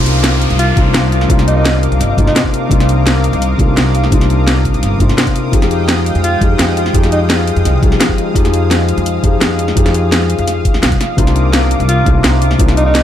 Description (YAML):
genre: liquid drum and bass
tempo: 170 BPM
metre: 4/4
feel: straight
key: C minor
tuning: A4 = 436 Hz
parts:
  - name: felt-muted upright piano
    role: accompaniment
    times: 0.0-13.0 s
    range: C3 to Ab4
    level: -16 LUFS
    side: left 3 dB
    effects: dub echo
  - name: lush unison pad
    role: sustained chords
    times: 0.0-13.0 s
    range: Ab3 to Eb6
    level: -21 LUFS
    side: equal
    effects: chorus, sidechain pumping
  - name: upright bass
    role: bass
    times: 0.0-13.0 s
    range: G1 to F2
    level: -15 LUFS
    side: equal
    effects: none
  - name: downlifter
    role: sound effects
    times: 0.0-2.7 s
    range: none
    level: -23 LUFS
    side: equal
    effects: none
  - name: drum and bass drum kit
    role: drums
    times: 0.1-13.0 s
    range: hi-hat, snare drum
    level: -17 LUFS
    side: equal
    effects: none
  - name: clear alto saxophone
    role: melody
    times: 0.6-2.4, 6.2-7.2, 11.9-13.0 s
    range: Eb4 to F4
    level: -20 LUFS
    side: right 1 dB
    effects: vintage 12-bit sampler grit, dub echo
  - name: electronic kick drum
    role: drums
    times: 0.8-12.7 s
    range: none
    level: -14 LUFS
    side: equal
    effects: none
room: light reverb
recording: echo-heavy mix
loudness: -10 LUFS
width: side -10 dB against mid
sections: 0.0-13.0 A section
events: none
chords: 0.0 Cm11; 5.5 Fm9; 11.2 Cm11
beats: 0.24 0.59 0.95 | 1.30 1.65 2.00 2.36 | 2.71 3.06 3.42 3.77 | 4.12 4.47 4.83 5.18 | 5.53 5.89 6.24 6.59 | 6.95 7.30 7.65 8.00 | 8.36 8.71 9.06 9.42 | 9.77 10.12 10.47 10.83 | 11.18 11.53 11.89 12.24 | 12.59 12.95